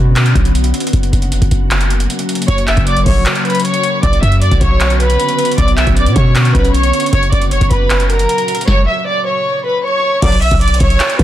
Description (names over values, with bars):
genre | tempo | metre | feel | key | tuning
hip hop, trap | 155 BPM | 4/4 | half-time | B harmonic minor | A4 = 440 Hz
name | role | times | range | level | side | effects
glassy FM pad | sustained chords | 0.0-11.2 s | A#2 to C#5 | -21 LUFS | left 1 dB | ensemble chorus, built-in reverb
warm 808-style bass | bass | 0.0-11.2 s | F#1 to B2 | -13 LUFS | equal | none
booming analog drum machine | drums | 0.2-11.2 s | crash cymbal, handclaps, hi-hat, kick drum, snare drum | -15 LUFS | equal | none
warm studio violin section | melody | 2.5-11.2 s | A#4 to E6 | -15 LUFS | equal | low-pass filter, digital delay
dark brass ensemble | stabs | 10.2-10.3 s | F#2 to F#3 | -23 LUFS | left 2 dB | none
room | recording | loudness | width
little or no reverb | dense, heavily limited modern master, vinyl crackle | -10 LUFS | side -12 dB against mid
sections
0.0-10.2 A section; 10.2-11.2 B section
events
break 0.0-2.5; kick muted 3.3-4.0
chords
0.0 Bmadd9; 0.9 F#; 4.0 Bmadd9; 7.1 F#; 10.2 Bmadd9